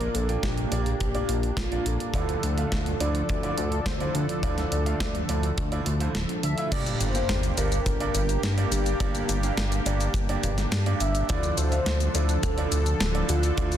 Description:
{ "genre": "synthwave", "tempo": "105 BPM", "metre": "4/4", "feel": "straight", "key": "unclear", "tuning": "A4 = 441 Hz", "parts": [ { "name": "warm velvety synth lead", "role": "melody", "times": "0.0-13.8 s", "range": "F4 to E5", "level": "-32 LUFS", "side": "equal", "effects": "chorus, ping-pong delay" }, { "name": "warm analog pad", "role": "sustained chords", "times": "0.0-13.8 s", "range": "D3 to A4", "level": "-33 LUFS", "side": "equal", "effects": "chorus, tremolo, sidechain pumping" }, { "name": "bright baby grand piano", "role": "stabs", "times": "0.0-13.8 s", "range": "G2 to G5", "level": "-33 LUFS", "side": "right 4 dB", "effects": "tape echo" }, { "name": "chorused synth bass", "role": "bass", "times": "0.0-13.8 s", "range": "D1 to G2", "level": "-27 LUFS", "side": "equal", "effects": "tube saturation, sidechain pumping" }, { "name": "clean 12-bit digital drum machine", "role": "drums", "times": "0.0-13.8 s", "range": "crash cymbal, hi-hat, shaker, snare drum", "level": "-32 LUFS", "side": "equal", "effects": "none" }, { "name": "kick drum", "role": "drums", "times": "0.4-13.7 s", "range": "none", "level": "-33 LUFS", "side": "equal", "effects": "none" }, { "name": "sub drop", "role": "sound effects", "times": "6.7-9.0 s", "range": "none", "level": "-34 LUFS", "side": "equal", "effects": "none" } ], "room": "light reverb, studio reverb", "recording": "dense, heavily limited modern master", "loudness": "-23 LUFS", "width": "side -10 dB against mid", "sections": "0.0-6.7 A section; 6.7-13.8 B section", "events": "kick drops out 6.1-6.7; impact 6.7-9.0", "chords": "0.0 Bb; 2.1 Dmadd9; 6.7 Gm; 11.3 Dmadd9", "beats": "0.43 1.00 1.58 | 2.15 2.72 3.29 3.86 | 4.43 5.00 5.58 6.15 | 6.72 7.29 7.86 8.43 | 9.00 9.58 10.15 10.72 | 11.29 11.86 12.43 13.00 | 13.58" }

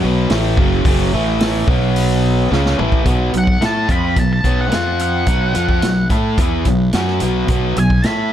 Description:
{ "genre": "blues rock power trio and southern rock", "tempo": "108 BPM", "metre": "4/4", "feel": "straight", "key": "unclear", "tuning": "A4 = 440 Hz", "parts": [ { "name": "biting overdriven guitar", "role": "riff", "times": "0.0-8.3 s", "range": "F#2 to A4", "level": "-17 LUFS", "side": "equal", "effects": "none" }, { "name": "fuzz fingered electric bass", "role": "bass", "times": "0.0-8.3 s", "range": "F#1 to A2", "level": "-19 LUFS", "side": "equal", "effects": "overdrive" }, { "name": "vintage drum kit", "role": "drums", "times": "0.3-8.2 s", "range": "hi-hat, kick drum, snare drum, toms", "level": "-19 LUFS", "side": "equal", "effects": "none" }, { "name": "octave-fuzz lead guitar", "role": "melody", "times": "3.4-8.3 s", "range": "F#5 to B5", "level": "-22 LUFS", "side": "equal", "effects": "wah, distortion, plate reverb" } ], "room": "light reverb", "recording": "none", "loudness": "-13 LUFS", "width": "side -10 dB against mid", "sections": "0.0-3.1 A section; 3.1-8.3 B section", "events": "drum fill 2.5-3.1", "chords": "0.0 A5; 1.7 B5; 2.5 A5; 3.1 B5; 4.7 F5; 5.3 B5", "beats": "0.31 | 0.86 1.41 1.96 2.51 | 3.06 3.62 4.17 4.72 | 5.27 5.83 6.38 6.93 | 7.49 8.04" }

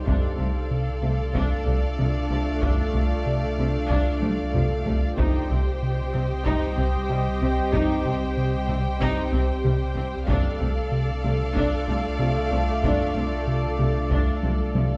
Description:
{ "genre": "cinematic, hybrid orchestral and electronic film score", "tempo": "94 BPM", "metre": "4/4", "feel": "straight", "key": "unclear", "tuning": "A4 = 438 Hz", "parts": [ { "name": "rich symphonic violin section", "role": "second line", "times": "0.0-15.0 s", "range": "C5 to G5", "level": "-36 LUFS", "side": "equal", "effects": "none" }, { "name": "rich symphonic viola section", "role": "accompaniment", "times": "0.0-15.0 s", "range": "F3 to A4", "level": "-33 LUFS", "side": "equal", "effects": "none" }, { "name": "analog drone", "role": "sustained chords", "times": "0.0-15.0 s", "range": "G3 to Eb5", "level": "-32 LUFS", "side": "equal", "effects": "chorus" }, { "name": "punchy sub bass", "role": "bass", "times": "0.0-15.0 s", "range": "C2", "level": "-32 LUFS", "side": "equal", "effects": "none" }, { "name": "round analog bass", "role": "riff", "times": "0.1-14.9 s", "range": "C2 to C3", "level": "-29 LUFS", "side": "equal", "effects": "none" }, { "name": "dark symphonic cello section", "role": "bass", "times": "0.1-14.8 s", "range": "C3", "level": "-36 LUFS", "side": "equal", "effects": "none" }, { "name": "warm symphonic double bass section", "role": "bass", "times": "0.1-14.8 s", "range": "C2", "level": "-35 LUFS", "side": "equal", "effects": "none" }, { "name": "solo taiko drums", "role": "drums", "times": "0.1-15.0 s", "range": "none", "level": "-32 LUFS", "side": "equal", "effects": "none" } ], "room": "moderate scoring stage reverb, RT60 1.7 s", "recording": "dark, warm production", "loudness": "-24 LUFS", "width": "mono", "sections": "0.0-15.0 A section", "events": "drum fill 4.2-5.2, 14.4-15.0", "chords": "0.1 Dm/C; 5.2 Cm; 10.3 Dm/C", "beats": "| 0.07 0.71 1.35 1.99 | 2.63 3.26 3.90 4.54 | 5.18 5.82 6.46 7.09 | 7.73 8.37 9.01 9.65 | 10.29 10.92 11.56 12.20 | 12.84 13.48 14.12 14.75" }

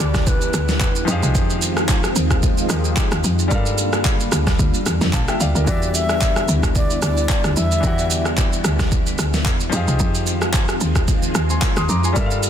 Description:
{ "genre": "amapiano", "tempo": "111 BPM", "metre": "4/4", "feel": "swing 55% on 16ths", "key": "unclear", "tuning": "A4 = 441 Hz", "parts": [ { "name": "bright long shakuhachi", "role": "melody", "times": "0.0-1.1, 5.7-8.4 s", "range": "B4 to E5", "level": "-26 LUFS", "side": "left 1 dB", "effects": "tape echo" }, { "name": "clear baby grand piano", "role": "accompaniment", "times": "0.0-12.5 s", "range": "E3 to Eb6", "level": "-26 LUFS", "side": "left 3 dB", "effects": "none" }, { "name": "soft string machine", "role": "sustained chords", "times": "0.0-12.5 s", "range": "D3 to F4", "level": "-26 LUFS", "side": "equal", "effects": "phaser, ensemble chorus, sidechain pumping" }, { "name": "woody log drum bass", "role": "bass", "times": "0.0-12.5 s", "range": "Bb1 to G2", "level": "-21 LUFS", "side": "equal", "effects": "none" }, { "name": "deep house drum kit", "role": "drums", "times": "0.0-12.5 s", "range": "handclaps, kick drum, rim click, shaker, snare drum", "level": "-19 LUFS", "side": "equal", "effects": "none" }, { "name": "downlifter", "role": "sound effects", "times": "0.1-1.3 s", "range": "none", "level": "-39 LUFS", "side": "equal", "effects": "none" } ], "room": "light reverb", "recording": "dense, heavily limited modern master", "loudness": "-16 LUFS", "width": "side -9 dB against mid", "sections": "0.0-12.5 A section", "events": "none", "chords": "0.0 Em7; 1.1 Fm7; 3.5 Gm7; 5.7 Em7; 9.7 Fm7", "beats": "0.27 0.81 | 1.35 1.89 2.43 2.97 | 3.51 4.05 4.59 5.13 | 5.67 6.21 6.75 7.30 | 7.84 8.38 8.92 9.46 | 10.00 10.54 11.08 11.62 | 12.16" }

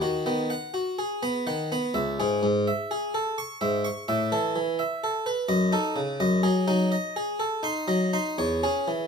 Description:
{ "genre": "classical, baroque-style suite movement for harpsichord", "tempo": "84 BPM", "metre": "3/4", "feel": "rubato", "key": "unclear", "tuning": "A4 = 440 Hz", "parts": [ { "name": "harpsichord", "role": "solo", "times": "0.0-9.1 s", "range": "C#2 to C#6", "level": "-24 LUFS", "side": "equal", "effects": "none" } ], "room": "moderate stone room reverb, RT60 1.1 s", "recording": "none", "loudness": "-24 LUFS", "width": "side -6 dB against mid", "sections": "0.0-9.1 A section", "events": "none", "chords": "0.0 B/D#; 2.0 C#m; 4.1 A5; 5.5 D#m7b5/F#; 6.2 G#7/F#; 8.4 C#m/E", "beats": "0.51 1.23 | 1.96 2.67 3.38 | 4.09 4.80 5.51 | 6.22 6.93 7.66 | 8.40" }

